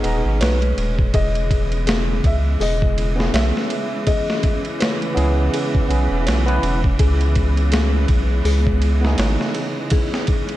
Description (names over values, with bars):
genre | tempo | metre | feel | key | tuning
trip hop | 82 BPM | 4/4 | swing 58% on 16ths | unclear | A4 = 443 Hz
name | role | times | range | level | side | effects
barky tine electric piano | accompaniment | 0.0-10.6 s | B3 to A#5 | -26 LUFS | right 2 dB | harmonic tremolo, vintage 12-bit sampler grit, tape echo
clear studio string section | sustained chords | 0.0-10.6 s | B2 to C#4 | -26 LUFS | right 2 dB | none
music box | arpeggios | 0.0-10.2 s | G#4 to C#5 | -29 LUFS | left 6 dB | tape echo
round analog bass | bass | 0.0-9.4 s | D#1 to C#2 | -18 LUFS | equal | none
boom bap sampler-style drum kit | drums | 0.0-10.6 s | hi-hat, kick drum, ride cymbal, snare drum | -21 LUFS | equal | vintage 12-bit sampler grit
felt-muted upright piano | melody | 0.4-5.5 s | B4 to E5 | -28 LUFS | left 1 dB | tape echo
room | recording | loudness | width
little or no reverb | dark, warm production | -16 LUFS | side -15 dB against mid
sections
0.0-10.6 A section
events
none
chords
0.0 G#madd9; 1.1 E6; 7.0 C#m7